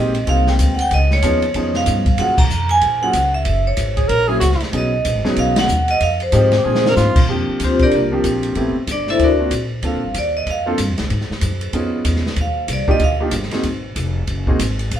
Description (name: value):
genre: jazz, small-group swing and bop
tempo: 188 BPM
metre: 4/4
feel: swing 61% on 8ths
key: Bb major from 7.3 s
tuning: A4 = 441 Hz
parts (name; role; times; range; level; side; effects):
- vibraphone with medium hard mallets; melody; 0.0-15.0 s; Bb3 to Bb5; -18 LUFS; equal; none
- clear concert grand piano; accompaniment; 0.0-14.6 s; F3 to A4; -22 LUFS; equal; none
- upright bass; bass; 0.0-15.0 s; F1 to Bb2; -20 LUFS; equal; none
- open jazz drum kit; drums; 0.1-15.0 s; crash cymbal, hi-hat, kick drum, ride cymbal, snare drum; -22 LUFS; equal; none
- breathy tenor saxophone; second line; 4.0-7.3 s; F4 to Bb4; -20 LUFS; right 2 dB; none
room: wet studio reverb, RT60 0.7 s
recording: band playing live in one room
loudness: -15 LUFS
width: side -10 dB against mid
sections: 0.0-7.3 A section; 7.3-15.0 B section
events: band accent 2.3, 5.5; drum fill 6.6-7.0; vibraphone solo 7.3-15.0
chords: 0.0 Abmaj7; 0.9 Db7; 2.2 Gbmaj7; 3.5 Gb; 4.7 B6; 6.0 Fm7; 6.6 Bb7; 7.3 Bb69; 8.6 Am7; 9.2 D7alt; 9.8 Gm11; 11.1 Gbsus2; 11.7 Db9; 12.4 Ebmaj9; 13.6 Ab7(no3)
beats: 0.27 0.59 | 0.91 1.23 1.55 1.86 | 2.18 2.50 2.82 3.14 | 3.46 3.78 4.09 4.41 | 4.73 5.05 5.37 5.69 | 6.00 6.32 6.64 6.96 | 7.28 7.60 7.92 8.23 | 8.55 8.87 9.19 9.51 | 9.82 10.14 10.46 10.78 | 11.10 11.41 11.73 12.05 | 12.37 12.69 13.01 13.32 | 13.64 13.96 14.28 14.59 | 14.91